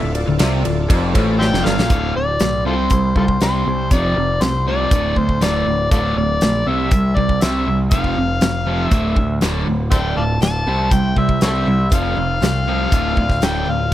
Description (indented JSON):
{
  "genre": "classic rock",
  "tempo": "120 BPM",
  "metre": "4/4",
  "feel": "straight",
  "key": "D minor",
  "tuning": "A4 = 439 Hz",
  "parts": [
    { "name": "bright concert grand piano", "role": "accompaniment", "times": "0.0-1.9 s", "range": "F4 to D5", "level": "-25 LUFS", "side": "left 3 dB", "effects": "none" },
    { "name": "bright tonewheel organ", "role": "sustained chords", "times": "0.0-1.9 s", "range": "F4 to D5", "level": "-30 LUFS", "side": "right 1 dB", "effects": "slow rotary speaker, overdrive, chorus vibrato" },
    { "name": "cranked stack guitar", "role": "riff", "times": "0.0-13.9 s", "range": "D2 to C4", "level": "-20 LUFS", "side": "right 1 dB", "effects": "overdrive, spring reverb" },
    { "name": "overdriven electric guitar", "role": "riff", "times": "0.0-1.9 s", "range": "D2 to C3", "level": "-23 LUFS", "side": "left 2 dB", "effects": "phaser" },
    { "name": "growling picked electric bass", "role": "bass", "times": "0.0-13.9 s", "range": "D1 to D2", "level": "-21 LUFS", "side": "equal", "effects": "overdrive" },
    { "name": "huge arena drum kit", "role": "drums", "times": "0.1-13.5 s", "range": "hi-hat, kick drum, ride cymbal, snare drum", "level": "-20 LUFS", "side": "equal", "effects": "none" },
    { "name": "overdriven harmonica", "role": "melody", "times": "1.4-13.9 s", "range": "F4 to A5", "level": "-21 LUFS", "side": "left 2 dB", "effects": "slapback echo" },
    { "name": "picked twelve-string acoustic guitar", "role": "accompaniment", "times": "9.9-13.9 s", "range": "C3 to C5", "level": "-30 LUFS", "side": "right 2 dB", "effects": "lush chorus" }
  ],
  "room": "little or no reverb",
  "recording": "dry, close 1970s-style studio recording",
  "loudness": "-15 LUFS",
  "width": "side -13 dB against mid",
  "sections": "0.0-1.9 A section; 1.9-13.9 B section",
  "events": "drum fill 1.4-1.9",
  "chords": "0.0 Dm; 1.9 D5; 2.6 C5; 3.9 F5; 4.9 D5; 6.7 C; 7.9 F5; 8.9 Dm; 10.7 C; 11.9 Fadd9; 12.9 Dm"
}